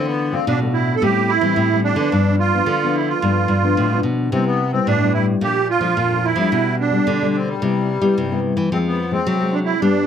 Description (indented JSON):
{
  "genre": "samba and choro",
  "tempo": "109 BPM",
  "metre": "4/4",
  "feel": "straight",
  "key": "C major",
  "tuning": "A4 = 440 Hz",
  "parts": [
    { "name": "musette accordion", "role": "melody", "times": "0.0-10.1 s", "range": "G3 to A4", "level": "-20 LUFS", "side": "right 5 dB", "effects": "none" },
    { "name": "nylon-string guitar", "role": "accompaniment", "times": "0.0-10.1 s", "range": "F2 to F4", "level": "-21 LUFS", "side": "left 5 dB", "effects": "none" },
    { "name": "nylon-string guitar", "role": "bass", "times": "0.0-10.1 s", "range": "G2 to G3", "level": "-20 LUFS", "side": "equal", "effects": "none" }
  ],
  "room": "light reverb",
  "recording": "close, detailed microphones",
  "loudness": "-16 LUFS",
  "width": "side -8 dB against mid",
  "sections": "0.0-10.1 A section",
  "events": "none",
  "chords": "0.0 Dm; 1.0 Am7; 2.1 G7; 4.3 Cmaj7; 5.4 Bbmaj7; 6.5 Gadd9/B; 7.6 Cmaj7; 8.7 Fm",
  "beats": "0.47 1.02 1.57 | 2.12 2.67 3.22 3.77 | 4.32 4.87 5.42 5.97 | 6.52 7.07 7.62 8.17 | 8.72 9.27 9.82"
}